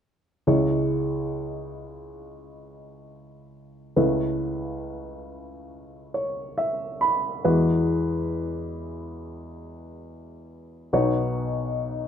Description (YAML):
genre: folk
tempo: 69 BPM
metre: 4/4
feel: straight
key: unclear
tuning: A4 = 439 Hz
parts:
  - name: warm upright piano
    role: melody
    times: 0.5-12.1 s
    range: B1 to B5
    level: -24 LUFS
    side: equal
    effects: none
room: moderate studio reverb, RT60 0.8 s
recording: dark, warm production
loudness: -23 LUFS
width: side -8 dB against mid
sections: 0.5-12.1 A section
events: upright piano fill 5.7-7.4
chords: 0.5 C#m; 4.0 Aadd9/C#; 7.4 Eadd9; 10.9 Badd9